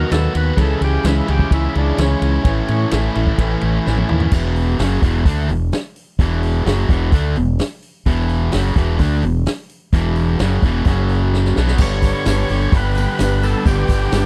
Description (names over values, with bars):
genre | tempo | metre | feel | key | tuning
classic rock | 128 BPM | 4/4 | straight | unclear | A4 = 440 Hz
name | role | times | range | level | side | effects
overdriven tonewheel organ | melody | 0.0-2.9, 11.8-14.3 s | C#4 to C#5 | -26 LUFS | equal | slow rotary speaker
picked steel-string acoustic guitar | accompaniment | 0.0-4.3, 11.8-14.3 s | G2 to G4 | -28 LUFS | equal | none
distorted electric guitar | riff | 0.0-14.3 s | E2 to F#4 | -28 LUFS | equal | overdrive
distorted electric guitar | riff | 0.0-14.3 s | E2 to G4 | -26 LUFS | equal | distortion
growling fingered electric bass | bass | 0.0-14.3 s | E1 to A2 | -20 LUFS | equal | overdrive
vintage drum kit | drums | 0.1-14.2 s | crash cymbal, hi-hat, kick drum, ride cymbal, snare drum, toms | -20 LUFS | equal | none
tambourine | percussion | 11.8-14.2 s | none | -41 LUFS | equal | none
room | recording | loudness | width
little or no reverb | dry, close 1970s-style studio recording | -17 LUFS | mono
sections
0.0-4.3 A section; 4.3-11.8 B section; 11.8-14.3 C section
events
tonewheel organ solo 0.0-4.3; drum fill 3.9-4.3, 11.3-11.8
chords
0.0 B/D#; 0.6 C#m; 2.5 A; 4.3 E5; 10.9 F#5; 11.6 B5; 11.8 G